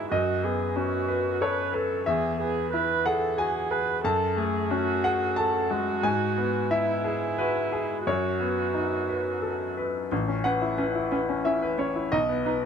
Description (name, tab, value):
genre	neoclassical piano and strings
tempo	90 BPM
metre	3/4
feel	rubato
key	E major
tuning	A4 = 441 Hz
part	bright grand piano	accompaniment	0.0-12.7 s	A1 to A5	-26 LUFS	left 2 dB	none
part	muted viola	accompaniment	0.0-12.5 s	C#4 to B4	-29 LUFS	right 6 dB	none
room	light reverb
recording	close, detailed microphones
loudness	-24 LUFS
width	side -7 dB against mid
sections	0.0-10.1 A section; 10.1-12.7 B section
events	none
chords	0.1 Badd9/F#; 2.1 E; 4.0 F#madd9; 6.0 E/G#; 8.1 Badd9/F#; 10.1 Aadd9; 12.1 B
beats	| 0.11 0.76 1.41 | 2.07 2.73 3.38 | 4.04 4.71 5.37 | 6.04 6.70 7.38 | 8.06 8.73 9.42 | 10.11 10.78 11.45 | 12.12